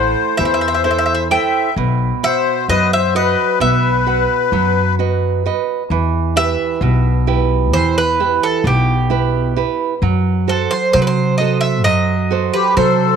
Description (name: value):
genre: greek folk, Greek bouzouki band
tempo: 131 BPM (eighths)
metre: 9/8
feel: straight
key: E harmonic minor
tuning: A4 = 441 Hz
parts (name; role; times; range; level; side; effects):
- Greek bouzouki; melody; 0.0-13.2 s; G4 to G5; -18 LUFS; right 2 dB; none
- accordion; second line; 0.0-5.0, 12.5-13.2 s; G4 to E5; -18 LUFS; left 13 dB; light tremolo tuning
- nylon-string guitar; accompaniment; 0.0-13.2 s; B2 to F#5; -18 LUFS; right 11 dB; none
- upright bass; bass; 0.0-13.2 s; A1 to C3; -18 LUFS; left 2 dB; none
room: light reverb, studio reverb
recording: 1960s-style stereo with parts hard left and right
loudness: -13 LUFS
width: side -7 dB against mid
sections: 0.0-5.9 A section; 5.9-13.2 B section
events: none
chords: 0.0 Am; 1.8 B; 5.9 Em; 10.0 F#dim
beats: 0.41 0.87 1.32 | 1.78 2.24 2.70 3.16 3.62 4.08 4.53 4.99 5.45 | 5.91 6.37 6.82 7.28 7.74 8.20 8.66 9.11 9.57 | 10.03 10.49 10.94 11.40 11.86 12.31 12.77